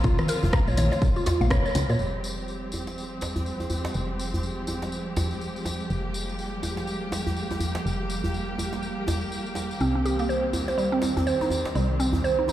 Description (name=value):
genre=afro house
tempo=123 BPM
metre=4/4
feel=swing 59% on 16ths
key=F minor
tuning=A4 = 439 Hz
part: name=dark chamber string section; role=sustained chords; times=0.0-12.5 s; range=Db3 to G4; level=-31 LUFS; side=right 1 dB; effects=sidechain pumping
part: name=mallet-like synth pluck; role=arpeggios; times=0.0-2.0, 9.8-12.5 s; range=G3 to Bb5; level=-26 LUFS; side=right 2 dB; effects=chorus, sidechain pumping, ping-pong delay
part: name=woody FM bass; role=bass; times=0.0-12.5 s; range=F1 to Bb2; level=-30 LUFS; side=equal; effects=sidechain pumping
part: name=electronic kick drum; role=drums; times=0.0-1.6 s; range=none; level=-23 LUFS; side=equal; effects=none
part: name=tambourine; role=percussion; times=0.0-12.5 s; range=none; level=-39 LUFS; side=left 2 dB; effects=none
part: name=afro-pop drum kit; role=drums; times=0.2-1.9 s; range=hi-hat, rim click, toms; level=-31 LUFS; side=equal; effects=none
part: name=djembe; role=percussion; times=0.4-12.5 s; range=none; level=-31 LUFS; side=equal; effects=none
part: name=congas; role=percussion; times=0.7-1.9 s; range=none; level=-37 LUFS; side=left 2 dB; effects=none
room=moderate lush hall reverb, RT60 2.7 s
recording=played on a big sound system in a bare room, large studio reverb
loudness=-24 LUFS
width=side -12 dB against mid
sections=0.0-2.0 A section; 2.0-12.5 B section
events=band accent 1.5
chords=0.0 Bbmadd9; 2.0 Fmadd9; 9.8 Cm7